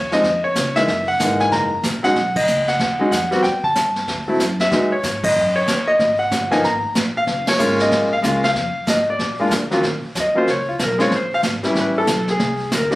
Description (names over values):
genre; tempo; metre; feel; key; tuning
jazz piano trio; 188 BPM; 4/4; swing 63% on 8ths; Eb minor; A4 = 436 Hz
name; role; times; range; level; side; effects
clear concert grand piano; melody; 0.0-13.0 s; Eb2 to Bb5; -17 LUFS; equal; none
upright bass; bass; 0.0-13.0 s; Gb1 to D3; -27 LUFS; equal; none
vintage brush drum kit; drums; 0.1-13.0 s; brushed snare drum, crash cymbal, hi-hat, kick drum, ride cymbal, snare drum; -23 LUFS; right 1 dB; none
room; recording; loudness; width
light reverb; recorded on a phone in the room, club reverb; -16 LUFS; side -18 dB against mid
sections
0.0-9.8 A section; 9.8-13.0 B section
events
band accent 2.3, 5.2, 7.4; grand piano solo 9.8-13.0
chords
0.0 Dbadd9; 0.9 Gb13; 2.2 Badd9; 3.4 A5; 4.1 Dadd9; 4.7 Emaj9; 6.0 Ab7(no3); 6.6 Fmadd11/Ab (rootless); 7.3 Gbmaj9; 8.6 Fm7; 9.2 Bb; 9.8 Eb7sus2; 11.1 Bb7(no3); 11.8 A9; 12.4 Ab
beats
0.24 0.56 | 0.88 1.20 1.52 1.84 | 2.16 2.48 2.80 3.12 | 3.44 3.76 4.08 4.40 | 4.72 5.04 5.36 5.68 | 6.00 6.32 6.64 6.96 | 7.28 7.60 7.92 8.23 | 8.55 8.88 9.20 9.52 | 9.84 10.15 10.47 10.79 | 11.12 11.44 11.76 12.08 | 12.40 12.72